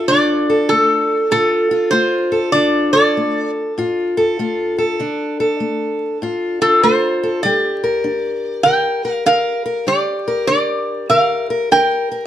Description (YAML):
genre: acoustic country blues, solo or duo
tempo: 98 BPM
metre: 4/4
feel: swing 65% on 8ths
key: D minor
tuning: A4 = 443 Hz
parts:
  - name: metal-body resonator slide guitar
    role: melody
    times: 0.0-12.2 s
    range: A4 to G5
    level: -15 LUFS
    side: right 1 dB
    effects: plate reverb
  - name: fingerpicked steel-string acoustic guitar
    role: accompaniment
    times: 0.0-12.3 s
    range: A2 to Bb4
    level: -18 LUFS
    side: left 2 dB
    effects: none
room: light reverb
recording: close, detailed microphones, vinyl crackle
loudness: -14 LUFS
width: side -11 dB against mid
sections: 0.0-12.3 A section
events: none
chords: 0.0 Dm; 7.4 Gm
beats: | 0.09 0.70 1.31 1.93 | 2.54 3.15 3.77 4.38 | 4.99 5.60 6.21 6.82 | 7.43 8.04 8.65 9.27 | 9.88 10.49 11.10 11.71